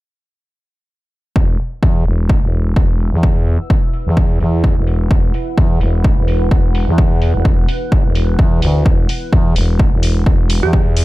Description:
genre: bass house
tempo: 128 BPM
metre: 4/4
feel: swing 57% on 16ths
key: unclear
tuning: A4 = 442 Hz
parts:
  - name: growling FM bass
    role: bass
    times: 1.4-11.0 s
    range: E1 to E2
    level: -16 LUFS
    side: equal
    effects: sidechain pumping
  - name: electronic kick drum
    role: drums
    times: 1.4-10.8 s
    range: none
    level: -14 LUFS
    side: equal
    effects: overdrive
  - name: deep dark ambient pad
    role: texture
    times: 3.1-11.0 s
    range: E4 to F#6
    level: -26 LUFS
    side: right 1 dB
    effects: chorus, built-in reverb, sidechain pumping
  - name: electronic hi-hat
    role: drums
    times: 1.6-11.0 s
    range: none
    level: -27 LUFS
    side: equal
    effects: low-pass filter on hats
  - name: glassy wavetable pluck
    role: melody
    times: 10.6-10.8 s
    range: G4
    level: -19 LUFS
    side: right 7 dB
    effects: chorus
room: little or no reverb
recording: none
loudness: -12 LUFS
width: side -18 dB against mid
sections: 1.4-11.0 A section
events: fade-in on ambient pad 1.4-11.0; filter sweep on drum 1.4-11.0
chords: 1.4 E5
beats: | 1.36 1.83 2.29 2.76 | 3.23 3.70 4.17 4.64 | 5.11 5.58 6.04 6.51 | 6.98 7.45 7.92 8.39 | 8.86 9.33 9.79 10.26 | 10.73

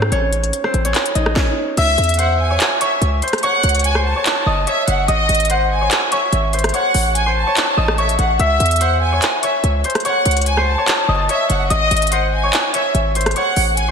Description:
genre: hip hop, trap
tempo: 145 BPM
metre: 4/4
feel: half-time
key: C# harmonic minor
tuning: A4 = 441 Hz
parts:
  - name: concert harp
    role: melody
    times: 0.0-13.9 s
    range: B#3 to E6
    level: -19 LUFS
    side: equal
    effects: ping-pong delay
  - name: hard-hitting 808-style bass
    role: bass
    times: 0.0-13.9 s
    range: F#1 to G#2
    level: -18 LUFS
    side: equal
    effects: none
  - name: trap drum kit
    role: drums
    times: 0.0-13.9 s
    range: crash cymbal, handclaps, hi-hat, kick drum, rim click, snare drum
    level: -20 LUFS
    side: equal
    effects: none
  - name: warm symphonic violin section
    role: second line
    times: 1.8-13.9 s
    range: D#5 to A5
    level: -19 LUFS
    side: equal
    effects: ping-pong delay
room: moderate lush hall reverb, RT60 1.8 s, digital ambience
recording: dreamy mix soaked in reverb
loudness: -14 LUFS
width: side -6 dB against mid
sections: 0.0-1.8 A section; 1.8-13.9 B section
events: break 0.0-1.8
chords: 0.1 A; 1.8 C#m; 3.4 F#m; 5.1 G#; 6.7 A; 8.4 C#m; 10.1 F#m; 11.7 G#; 13.4 A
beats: | 0.12 0.53 0.95 1.36 | 1.77 2.19 2.60 3.02 | 3.43 3.84 4.26 4.67 | 5.08 5.50 5.91 6.33 | 6.74 7.15 7.57 7.98 | 8.39 8.81 9.22 9.64 | 10.05 10.46 10.88 11.29 | 11.71 12.12 12.53 12.95 | 13.36 13.77

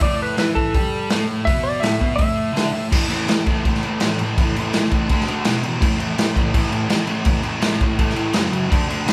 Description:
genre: garage rock duo or trio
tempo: 166 BPM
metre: 4/4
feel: straight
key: unclear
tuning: A4 = 440 Hz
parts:
  - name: clean lap steel guitar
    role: melody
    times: 0.0-2.9 s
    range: A4 to E5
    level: -26 LUFS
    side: equal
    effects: none
  - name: fuzz guitar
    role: riff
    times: 0.0-9.1 s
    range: E2 to G4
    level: -24 LUFS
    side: equal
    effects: distortion
  - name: raw garage drum kit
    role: drums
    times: 0.0-9.1 s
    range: crash cymbal, hi-hat, kick drum, snare drum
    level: -22 LUFS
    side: equal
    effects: none
room: light reverb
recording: band playing live in one room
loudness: -20 LUFS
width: mono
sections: 0.0-2.9 A section; 2.9-9.1 B section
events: electric slide guitar solo 0.0-2.9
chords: 0.0 A5; 5.1 D5; 5.4 E5; 5.8 A5; 8.3 F#5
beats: | 0.01 0.37 0.74 1.10 | 1.46 1.82 2.19 2.55 | 2.91 3.27 3.63 4.00 | 4.36 4.72 5.08 5.44 | 5.80 6.17 6.53 6.89 | 7.25 7.62 7.98 8.34 | 8.70 9.07

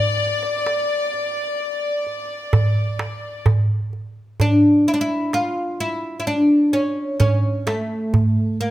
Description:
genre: Arabic maqam ensemble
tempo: 129 BPM (eighths)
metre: 10/8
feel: straight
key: D maqam nahawand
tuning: A4 = 440 Hz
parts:
  - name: oud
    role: melody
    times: 0.0-8.7 s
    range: A3 to F4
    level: -18 LUFS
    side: equal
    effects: none
  - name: dark violin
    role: second line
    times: 0.0-3.4 s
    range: D5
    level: -25 LUFS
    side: left 6 dB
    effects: none
  - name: warm studio violin section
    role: second line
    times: 0.0-3.4 s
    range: D5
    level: -26 LUFS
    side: right 1 dB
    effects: none
  - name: darbuka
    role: percussion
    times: 0.2-8.7 s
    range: none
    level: -19 LUFS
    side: right 2 dB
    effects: none
room: moderate recital hall reverb, RT60 1.4 s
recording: close, detailed microphones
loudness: -18 LUFS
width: side -14 dB against mid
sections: 0.0-4.4 A section; 4.4-8.7 B section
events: none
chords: none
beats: 0.20 0.67 1.14 1.60 2.07 2.54 3.00 3.47 3.94 | 4.40 4.87 5.34 5.80 6.27 6.74 7.20 7.67 8.14 8.61

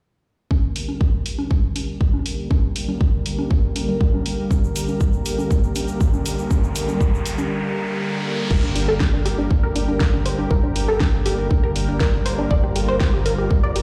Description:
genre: progressive house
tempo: 120 BPM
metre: 4/4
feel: straight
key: G minor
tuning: A4 = 440 Hz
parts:
  - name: warm analog pad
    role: sustained chords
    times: 0.5-13.8 s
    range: D3 to Bb4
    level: -28 LUFS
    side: equal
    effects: chorus, sidechain pumping
  - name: electronic kick drum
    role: drums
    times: 0.5-13.6 s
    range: none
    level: -21 LUFS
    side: equal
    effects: small room ambience
  - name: congas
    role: percussion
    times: 0.5-7.5 s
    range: none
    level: -32 LUFS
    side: equal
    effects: sidechain pumping on perc, small room ambience
  - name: pop drum kit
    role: drums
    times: 0.8-13.8 s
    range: crash cymbal, hi-hat, snare drum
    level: -31 LUFS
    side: equal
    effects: small room ambience
  - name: egg shaker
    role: percussion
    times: 4.5-7.5 s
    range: none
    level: -39 LUFS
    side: equal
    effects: none
  - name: riser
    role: sound effects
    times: 5.6-8.5 s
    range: none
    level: -34 LUFS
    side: equal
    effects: none
  - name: unison pluck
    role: arpeggios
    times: 8.5-13.8 s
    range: D4 to D5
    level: -27 LUFS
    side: equal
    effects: sidechain pumping, dub echo
  - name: tight sequencer bass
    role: bass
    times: 8.5-13.8 s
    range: G1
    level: -26 LUFS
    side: equal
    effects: sidechain pumping
room: light reverb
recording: played on a big sound system in a bare room, large studio reverb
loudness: -20 LUFS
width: mono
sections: 0.5-8.5 A section; 8.5-13.8 B section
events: filter sweep on analog synth pad 0.5-8.5; riser 5.6-8.5; break 7.5-8.5; filter sweep on synth pluck 8.5-13.8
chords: 0.5 Gm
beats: | 0.51 1.01 1.51 2.01 | 2.51 3.01 3.51 4.01 | 4.51 5.01 5.51 6.01 | 6.51 7.01 7.51 8.01 | 8.51 9.01 9.51 10.01 | 10.51 11.01 11.51 12.01 | 12.51 13.01 13.51

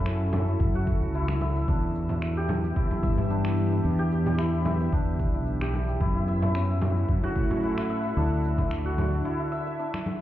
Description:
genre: organic downtempo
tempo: 111 BPM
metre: 4/4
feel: swing 54% on 16ths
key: E dorian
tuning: A4 = 441 Hz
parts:
  - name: warm analog pad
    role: sustained chords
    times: 0.0-10.2 s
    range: D3 to F#5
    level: -33 LUFS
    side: left 1 dB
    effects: chorus, sidechain pumping
  - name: santur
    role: arpeggios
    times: 0.0-10.2 s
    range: C#4 to E5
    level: -32 LUFS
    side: equal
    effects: ping-pong delay
  - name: mellow fretless electric bass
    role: bass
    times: 0.0-9.2 s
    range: B1 to A2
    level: -26 LUFS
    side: equal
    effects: sidechain pumping
  - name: electronic finger snaps, cabasa and congas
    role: drums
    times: 0.1-10.2 s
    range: none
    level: -35 LUFS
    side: left 1 dB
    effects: none
  - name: frame drum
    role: percussion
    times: 0.3-9.1 s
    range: none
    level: -34 LUFS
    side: right 2 dB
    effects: none
  - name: electronic kick drum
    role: drums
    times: 0.6-8.7 s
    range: none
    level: -28 LUFS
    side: equal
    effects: none
room: light reverb, digital ambience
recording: heard muffled through a wall, club reverb, EQ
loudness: -24 LUFS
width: side -13 dB against mid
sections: 0.0-10.2 A section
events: break 9.3-10.2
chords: 0.0 F#m7; 1.7 Em7; 6.0 F#m7; 8.2 Dadd9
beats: 0.06 0.60 1.14 | 1.68 2.22 2.76 3.31 | 3.85 4.39 4.93 5.47 | 6.01 6.55 7.09 7.63 | 8.17 8.71 9.25 9.79

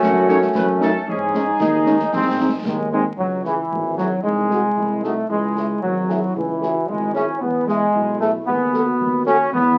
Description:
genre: military-style march for wind band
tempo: 114 BPM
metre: 2/4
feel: straight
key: C# minor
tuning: A4 = 440 Hz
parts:
  - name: dark trumpet section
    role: melody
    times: 0.0-9.4 s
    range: F#4 to D#5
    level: -30 LUFS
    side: equal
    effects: none
  - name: clear euphonium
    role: second line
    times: 0.0-9.8 s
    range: D#4 to G#4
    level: -29 LUFS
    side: equal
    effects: none
  - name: bright trombone section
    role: sustained chords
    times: 0.0-9.8 s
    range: D#3 to D#4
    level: -22 LUFS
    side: equal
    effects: none
  - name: warm tuba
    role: bass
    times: 0.0-9.8 s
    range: G#1 to G#2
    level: -29 LUFS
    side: equal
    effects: none
  - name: concert snare drum and concert bass drum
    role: drums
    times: 0.0-9.7 s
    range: none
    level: -32 LUFS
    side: equal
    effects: none
  - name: warm French horn section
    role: accompaniment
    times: 0.3-9.4 s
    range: G#3 to A4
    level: -26 LUFS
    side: equal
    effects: none
room: wet studio reverb, RT60 0.6 s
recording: very old 78 rpm record, vinyl crackle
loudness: -20 LUFS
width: mono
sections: 0.0-3.2 A section; 3.2-9.8 B section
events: none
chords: 0.0 D#m7b5/F#; 1.1 G#sus4; 2.1 G#; 3.2 C#m; 4.2 G#7/B#; 5.3 C#m; 7.4 E; 8.5 B7/D#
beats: | 0.02 0.55 | 1.07 1.60 | 2.13 2.66 | 3.19 3.71 | 4.24 4.77 | 5.30 5.83 | 6.36 6.89 | 7.42 7.94 | 8.47 9.00 | 9.53

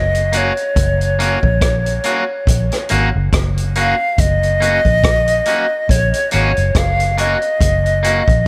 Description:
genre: roots reggae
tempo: 70 BPM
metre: 4/4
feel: swing 56% on 16ths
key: F# major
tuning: A4 = 440 Hz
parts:
  - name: silver concert flute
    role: melody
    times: 0.0-8.5 s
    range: C#5 to E#5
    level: -20 LUFS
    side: equal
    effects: dub echo
  - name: vintage muted fingered electric bass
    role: bass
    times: 0.0-8.5 s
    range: F#1 to A#1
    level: -20 LUFS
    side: equal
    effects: none
  - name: vintage drum kit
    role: drums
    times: 0.1-8.5 s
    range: hi-hat, kick drum, rim click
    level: -20 LUFS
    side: equal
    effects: none
  - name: electric guitar at the edge of break-up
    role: accompaniment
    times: 0.3-8.2 s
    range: A#3 to F#4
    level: -23 LUFS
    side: equal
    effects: dub echo
room: studio reverb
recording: none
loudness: -15 LUFS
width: mono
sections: 0.0-8.5 A section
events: none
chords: 0.0 F#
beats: | 0.77 1.62 2.48 3.33 | 4.19 5.04 5.90 6.76 | 7.61 8.47

